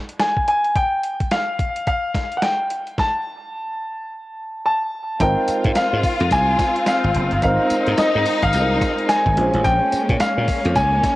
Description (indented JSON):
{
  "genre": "R&B, new jack swing",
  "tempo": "108 BPM",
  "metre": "4/4",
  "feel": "swing 61% on 16ths",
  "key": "unclear",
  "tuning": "A4 = 441 Hz",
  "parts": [
    { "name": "dusty soul sampler-style drum kit", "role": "drums", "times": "0.1-11.2 s", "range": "hi-hat, kick drum, snare drum, tambourine", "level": "-24 LUFS", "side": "equal", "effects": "cassette tape" },
    { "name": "clear baby grand piano", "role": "melody", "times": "0.2-11.2 s", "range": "Eb5 to A5", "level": "-20 LUFS", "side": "left 1 dB", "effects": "cassette tape" },
    { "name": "dark baby grand piano", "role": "accompaniment", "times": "5.2-11.2 s", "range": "C4 to C5", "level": "-25 LUFS", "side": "right 2 dB", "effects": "none" },
    { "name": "warm symphonic string section", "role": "sustained chords", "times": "5.2-11.2 s", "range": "Ab3 to F4", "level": "-23 LUFS", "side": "left 2 dB", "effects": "none" },
    { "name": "dry thumbed slap bass", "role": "bass", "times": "5.2-11.0 s", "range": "Gb1 to Bb2", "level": "-21 LUFS", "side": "equal", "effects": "none" }
  ],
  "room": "moderate spring reverb, RT60 2.0 s, small room reverb",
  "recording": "home recording on cassette",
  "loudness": "-17 LUFS",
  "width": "side -17 dB against mid",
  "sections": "0.0-5.2 A section; 5.2-11.2 B section",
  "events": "stop 3.0-5.2",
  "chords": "0.0 N.C.; 5.2 Ab6; 9.4 Bbm7",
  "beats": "0.20 | 0.76 1.31 1.87 2.42 | 2.98 3.53 4.09 4.65 | 5.20 5.76 6.31 6.87 | 7.42 7.98 8.53 9.09 | 9.65 10.20 10.76"
}